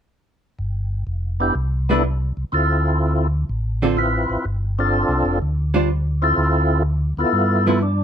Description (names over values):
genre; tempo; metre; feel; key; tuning
jazz; 125 BPM; 4/4; swing 68% on 8ths; C major; A4 = 439 Hz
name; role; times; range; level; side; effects
mellow tonewheel organ; bass; 0.6-8.0 s; F1 to G2; -20 LUFS; equal; chorus vibrato
percussive tonewheel organ; melody; 1.4-8.0 s; B3 to B4; -20 LUFS; equal; slow rotary speaker, overdrive, chorus vibrato
archtop guitar, miked and amplified; accompaniment; 1.9-7.8 s; D3 to C5; -21 LUFS; right 2 dB; none
room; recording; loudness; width
light reverb; close, detailed microphones; -18 LUFS; side -8 dB against mid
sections
0.6-8.0 A section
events
none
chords
0.6 Cmaj9; 2.5 Dm7; 4.4 G7sus4; 6.4 Dm7; 7.3 G13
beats
| 0.59 1.07 1.56 2.04 | 2.52 3.00 3.48 3.97 | 4.45 4.93 5.41 5.89 | 6.37 6.85 7.33 7.81